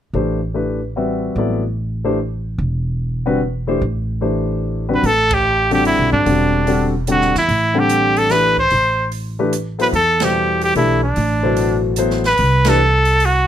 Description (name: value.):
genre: modal jazz.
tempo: 147 BPM.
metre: 3/4.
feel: swing 66% on 8ths.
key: A dorian.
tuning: A4 = 440 Hz.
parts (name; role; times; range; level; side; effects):
warm baby grand piano; accompaniment; 0.1-12.8 s; B2 to F#5; -19 LUFS; left 3 dB; none.
upright bass; bass; 0.1-13.4 s; E1 to E2; -20 LUFS; right 1 dB; none.
bright trumpet; melody; 4.9-13.5 s; D4 to C5; -15 LUFS; right 1 dB; none.
open jazz drum kit; drums; 5.0-13.3 s; hi-hat, kick drum, ride cymbal, snare drum; -28 LUFS; right 3 dB; none.
room: light reverb.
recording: none.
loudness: -14 LUFS.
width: side -10 dB against mid.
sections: 0.1-5.0 A section; 5.0-13.5 B section.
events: band accent 5.2, 10.1, 12.6.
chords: 0.1 Am11.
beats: | 0.14 0.55 0.96 | 1.37 1.77 2.18 | 2.59 3.00 3.41 | 3.82 4.22 4.63 | 5.04 5.45 5.86 | 6.27 6.67 7.08 | 7.49 7.90 8.31 | 8.71 9.12 9.53 | 9.94 10.35 10.75 | 11.16 11.57 11.98 | 12.39 12.79 13.20.